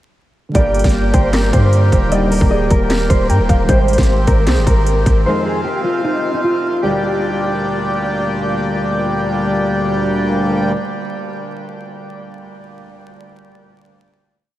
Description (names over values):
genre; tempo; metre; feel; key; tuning
hip hop, trap; 153 BPM; 4/4; half-time; G phrygian; A4 = 440 Hz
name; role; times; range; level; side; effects
mellow electric guitar; melody; 0.5-8.0 s; Eb4 to D5; -20 LUFS; equal; ensemble chorus, low-pass filter
tine electric piano; accompaniment; 0.5-5.3 s; D3 to C5; -23 LUFS; right 2 dB; analog chorus, low-pass filter
hard-hitting 808-style bass; bass; 0.5-5.2 s; D1 to G2; -15 LUFS; equal; none
trap drum kit; drums; 0.5-5.2 s; handclaps, hi-hat, kick drum, snare drum; -17 LUFS; equal; overdrive
warbly dusty pluck; second line; 0.6-3.7 s; D5 to G5; -28 LUFS; equal; none
accordion; sustained chords; 0.6-10.7 s; Bb2 to G4; -23 LUFS; right 1 dB; none
warm brass ensemble; stabs; 0.6-10.7 s; D2 to Ab3; -21 LUFS; left 1 dB; analog delay
room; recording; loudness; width
moderate huge ambient reverb, RT60 7.6 s; dreamy mix soaked in reverb, vinyl crackle; -13 LUFS; side -14 dB against mid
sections
0.5-6.8 hook; 6.8-10.0 final chord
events
none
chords
0.5 Gm; 2.1 Ebmaj7; 3.7 Abmaj7; 5.3 Fm7; 6.8 Gm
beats
| 0.55 0.94 1.33 1.73 | 2.12 2.51 2.90 3.29 | 3.69 4.08 4.47 4.86 | 5.25 5.65 6.04 6.43 | 6.82 7.22 7.61 8.00 | 8.39 8.79 9.18 9.57